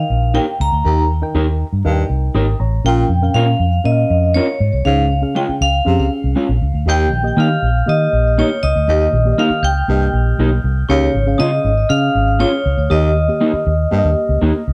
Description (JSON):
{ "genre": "soul", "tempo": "119 BPM", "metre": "4/4", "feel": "straight", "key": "Eb mixolydian", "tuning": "A4 = 440 Hz", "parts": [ { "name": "vibraphone with hard mallets", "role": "melody", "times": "0.0-14.4 s", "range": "Db5 to Bb5", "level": "-22 LUFS", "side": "equal", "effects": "tape echo" }, { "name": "reed electric piano", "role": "accompaniment", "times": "0.0-14.6 s", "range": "Bb2 to Eb6", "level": "-25 LUFS", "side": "equal", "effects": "none" }, { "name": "vintage muted fingered electric bass", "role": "bass", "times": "0.0-14.7 s", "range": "Ab1 to Eb3", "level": "-18 LUFS", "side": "equal", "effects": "none" }, { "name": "electric guitar through a small old amp", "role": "stabs", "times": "0.3-14.5 s", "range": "Ab3 to Bb4", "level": "-21 LUFS", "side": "equal", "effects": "none" }, { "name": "clear baritone saxophone", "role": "riff", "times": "0.9-14.1 s", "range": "Eb2 to C3", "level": "-23 LUFS", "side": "equal", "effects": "none" }, { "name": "glockenspiel with hard plastic mallets", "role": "second line", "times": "6.9-14.4 s", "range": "Db6 to G6", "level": "-29 LUFS", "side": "equal", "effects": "none" } ], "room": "light reverb", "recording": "dark, warm production", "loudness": "-16 LUFS", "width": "mono", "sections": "0.0-14.7 A section", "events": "none", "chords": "0.0 Eb; 2.9 Bbm; 4.9 Db; 6.9 Eb; 10.9 Db; 12.9 Eb" }